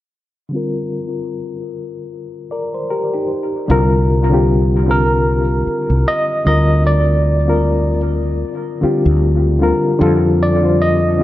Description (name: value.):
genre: R&B, neo-soul.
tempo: 76 BPM.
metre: 4/4.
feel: swing 58% on 16ths.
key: C minor.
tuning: A4 = 438 Hz.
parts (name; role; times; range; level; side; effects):
reed electric piano; accompaniment; 0.5-11.2 s; D3 to D5; -17 LUFS; left 2 dB; overdrive, medium tremolo, low-pass filter, tape echo.
mellow fretless electric bass; bass; 3.7-11.2 s; C2 to F2; -15 LUFS; equal; none.
overdriven tine electric piano; melody; 4.9-11.2 s; Bb4 to Eb5; -19 LUFS; right 2 dB; fast tremolo, tape echo.
room: light reverb, digital ambience.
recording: echo-heavy mix.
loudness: -13 LUFS.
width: side -14 dB against mid.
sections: 0.5-3.7 A section; 3.7-11.2 B section.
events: filter sweep on reed electric piano 0.5-3.7.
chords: 0.5 Csus2; 3.3 N.C.; 3.7 Csus2; 6.5 C9sus4/D; 10.0 F9.